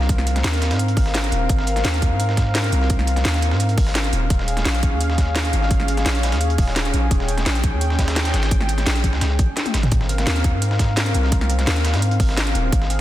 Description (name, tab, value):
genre	liquid drum and bass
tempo	171 BPM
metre	4/4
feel	straight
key	Ab major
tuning	A4 = 440 Hz
part	warm analog pad	sustained chords	0.0-13.0 s	C4 to G5	-26 LUFS	equal	chorus, sidechain pumping
part	long sustained 808-style bass	bass	0.0-13.0 s	Eb1 to Ab2	-20 LUFS	equal	none
part	dusty soul sampler-style drum kit	drums	0.0-13.0 s	hi-hat, snare drum	-30 LUFS	right 1 dB	overdrive, high-pass filter on hats, high-pass filter on snare
part	electronic kick drum	drums	0.1-12.8 s	none	-21 LUFS	equal	none
part	garage drum kit	drums	0.1-13.0 s	hi-hat, snare drum, toms	-24 LUFS	equal	none
room	light reverb, digital ambience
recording	dense, heavily limited modern master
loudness	-17 LUFS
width	side -14 dB against mid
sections	0.0-13.0 A section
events	drum fill 9.6-9.9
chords	0.0 Ab69; 4.3 Eb9sus4; 9.9 Ab69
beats	| 0.09 0.45 0.80 1.15 | 1.50 1.85 2.20 2.55 | 2.90 3.25 3.60 3.95 | 4.30 4.66 5.01 5.36 | 5.71 6.06 6.41 6.76 | 7.11 7.46 7.81 8.16 | 8.52 8.87 9.22 9.57 | 9.92 10.27 10.62 10.97 | 11.32 11.67 12.02 12.38 | 12.73